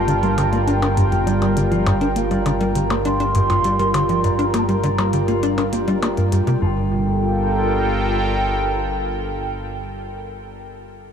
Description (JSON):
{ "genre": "ambient, sequencer-driven space music", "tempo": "101 BPM", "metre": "4/4", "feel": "straight", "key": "G minor", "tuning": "A4 = 440 Hz", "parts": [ { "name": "mellow hollow wooden flute", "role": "melody", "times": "0.0-9.8 s", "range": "G5 to C6", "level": "-25 LUFS", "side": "equal", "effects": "analog delay" }, { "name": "sweeping resonant pad", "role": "sustained chords", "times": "0.0-9.8 s", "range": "G3 to G5", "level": "-23 LUFS", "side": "right 2 dB", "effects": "chorus" }, { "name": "mellow electric guitar", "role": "arpeggios", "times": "0.0-6.9 s", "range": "F4 to D5", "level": "-29 LUFS", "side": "left 2 dB", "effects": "auto-pan, analog delay" }, { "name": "tight sequencer bass", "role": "riff", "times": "0.0-6.9 s", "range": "G2 to D4", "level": "-21 LUFS", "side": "left 1 dB", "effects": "lush chorus, analog delay" }, { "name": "analog drone", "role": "bass", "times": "0.0-8.4 s", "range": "G1", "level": "-24 LUFS", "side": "equal", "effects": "chorus" }, { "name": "electronic hi-hat and percussion blips", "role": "percussion", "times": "0.1-6.6 s", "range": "none", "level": "-30 LUFS", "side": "left 3 dB", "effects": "overdrive, analog delay" } ], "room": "wet huge ambient reverb, RT60 7.6 s", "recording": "cassette tape", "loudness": "-17 LUFS", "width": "side -7 dB against mid", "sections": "0.0-6.6 A section; 6.6-9.0 B section", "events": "filter sweep on analog synth bass 0.0-6.6", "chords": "0.0 Gm7", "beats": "0.08 0.68 1.27 | 1.86 2.46 3.05 3.65 | 4.24 4.83 5.43 6.02 | 6.62 7.21 7.80 8.40" }